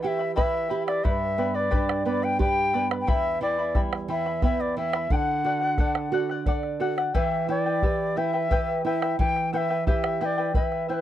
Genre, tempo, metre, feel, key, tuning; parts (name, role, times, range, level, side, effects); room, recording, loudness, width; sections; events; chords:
andean folk, Andean ensemble; 88 BPM; 3/4; straight; E minor; A4 = 441 Hz
bright reedy bansuri; melody; 0.0-11.0 s; B4 to G5; -26 LUFS; left 2 dB
charango; accompaniment; 0.0-11.0 s; E4 to B5; -30 LUFS; left 4 dB
nylon-string guitar; accompaniment; 0.0-11.0 s; E2 to D5; -29 LUFS; right 6 dB
bombo; percussion; 0.2-10.8 s; -26 LUFS; equal
moderate booth ambience, RT60 0.2 s; dry, close 1970s-style studio recording; -22 LUFS; side -12 dB against mid
0.0-11.0 A section
0.0 Em; 1.0 G; 3.1 Em; 5.1 D; 7.2 Em